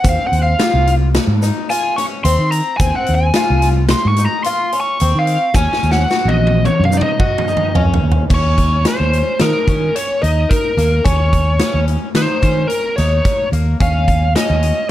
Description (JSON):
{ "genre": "progressive instrumental, band music in an uneven meter", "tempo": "109 BPM", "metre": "5/4", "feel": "straight", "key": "Eb dorian", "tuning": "A4 = 440 Hz", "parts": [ { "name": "biting lead guitar", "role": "melody", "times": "0.0-14.9 s", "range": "Bb4 to Db6", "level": "-18 LUFS", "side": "equal", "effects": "overdrive, plate reverb" }, { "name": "fingerpicked twelve-string acoustic guitar", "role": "arpeggios", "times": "0.0-14.8 s", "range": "Bb3 to Gb4", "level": "-24 LUFS", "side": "left 6 dB", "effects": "plate reverb" }, { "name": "fretless electric bass", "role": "bass", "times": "0.0-14.7 s", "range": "Bb1 to Eb3", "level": "-15 LUFS", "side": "equal", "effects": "none" }, { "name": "big rock drum kit", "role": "drums", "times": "0.0-14.8 s", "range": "crash cymbal, hi-hat, kick drum, snare drum, toms", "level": "-18 LUFS", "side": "equal", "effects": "none" }, { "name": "egg shaker", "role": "percussion", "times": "0.0-7.6 s", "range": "none", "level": "-33 LUFS", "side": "right 7 dB", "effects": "none" } ], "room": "light reverb", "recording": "dark, warm production", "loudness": "-13 LUFS", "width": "side -13 dB against mid", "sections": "0.0-8.3 A section; 8.3-14.9 B section", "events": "lead electric guitar solo 0.0-8.3; drum fill 5.6-8.3", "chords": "0.0 F5; 5.6 Ebm7; 8.3 Eb7(no3)" }